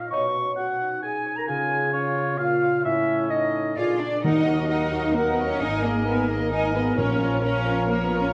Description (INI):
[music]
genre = cinematic, heroic adventure film score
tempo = 132 BPM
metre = 3/4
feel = straight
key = Eb minor from 4.2 s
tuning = A4 = 443 Hz
[part]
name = silver concert flute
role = second line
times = 0.0-8.3 s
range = C#5 to C#6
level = -33 LUFS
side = equal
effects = none
[part]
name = warm oboe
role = second line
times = 0.0-8.3 s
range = C#5 to C#6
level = -32 LUFS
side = equal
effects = none
[part]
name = clear French horn section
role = sustained chords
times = 0.0-8.3 s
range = Bb3 to C#5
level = -32 LUFS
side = equal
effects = none
[part]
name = concert harp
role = arpeggios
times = 0.0-8.3 s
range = Ab2 to Bb5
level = -36 LUFS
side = equal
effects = none
[part]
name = dark trombone section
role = sustained chords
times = 0.1-8.3 s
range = A2 to Bb3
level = -36 LUFS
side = equal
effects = none
[part]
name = mellow trumpet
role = stabs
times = 0.1-8.3 s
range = C#4 to Bb4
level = -35 LUFS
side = equal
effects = none
[part]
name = warm symphonic violin section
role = second line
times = 3.8-8.3 s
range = Bb4 to E#5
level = -37 LUFS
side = equal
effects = none
[part]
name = rich symphonic cello section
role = bass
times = 3.8-8.3 s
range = Bb3 to E#4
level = -28 LUFS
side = equal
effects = none
[part]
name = rich symphonic violin section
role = melody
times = 4.2-8.3 s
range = Bb4 to Ab5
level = -39 LUFS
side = equal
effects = none
[part]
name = mellow clarinet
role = second line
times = 4.2-8.3 s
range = Bb4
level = -35 LUFS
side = equal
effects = none
[part]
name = clear symphonic viola section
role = accompaniment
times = 4.2-8.3 s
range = Db4 to Db5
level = -35 LUFS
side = equal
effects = none
[part]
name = rich symphonic double bass section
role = bass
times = 4.2-8.3 s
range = Ab1 to Eb2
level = -31 LUFS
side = equal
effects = none
[part]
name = timpani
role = percussion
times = 4.2-4.9, 7.0-7.6 s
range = Bb2 to Eb3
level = -32 LUFS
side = equal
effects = none
[sound]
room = wet scoring stage reverb, RT60 1.6 s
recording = nothing above 10.8 kHz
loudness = -24 LUFS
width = mono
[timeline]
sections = 0.0-4.2 A section; 4.2-8.3 B section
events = none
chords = 0.1 Badd9; 1.5 C#; 2.8 A; 3.8 A#7; 4.2 Ebm; 5.6 Absus2; 7.0 Bbm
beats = | 0.12 0.57 1.03 | 1.48 1.93 2.38 | 2.84 3.30 3.77 | 4.24 4.70 5.16 | 5.61 6.07 6.52 | 6.98 7.43 7.89